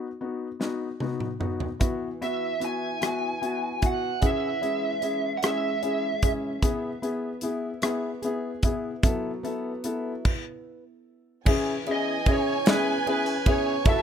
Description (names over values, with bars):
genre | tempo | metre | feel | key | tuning
six-eight pop ballad | 50 BPM (dotted quarters) | 6/8 | straight | E major | A4 = 440 Hz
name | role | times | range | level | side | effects
felt-muted upright piano | accompaniment | 0.0-14.0 s | B3 to A4 | -29 LUFS | left 4 dB | none
modern studio drum kit | drums | 0.6-14.0 s | crash cymbal, hi-hat, kick drum, ride cymbal, rim click, snare drum, toms | -25 LUFS | right 1 dB | none
fingerpicked plugged-in steel-string acoustic guitar | arpeggios | 1.8-14.0 s | E3 to G#4 | -36 LUFS | right 3 dB | none
bluesy overdriven lead guitar | melody | 2.2-6.3, 11.9-14.0 s | B4 to G#5 | -28 LUFS | right 4 dB | distortion, tape echo
rich studio violin section | second line | 11.5-14.0 s | G#5 to A5 | -31 LUFS | right 1 dB | none
room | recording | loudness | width
small room reverb | rough home demo mix | -24 LUFS | side -8 dB against mid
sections
0.0-11.5 A section; 11.5-14.0 B section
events
drum fill 0.6-1.8; stop 10.3-11.5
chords
0.0 B; 1.8 Bsus4; 4.2 C#m; 6.6 E; 9.0 B7sus4; 10.3 N.C.; 11.5 E6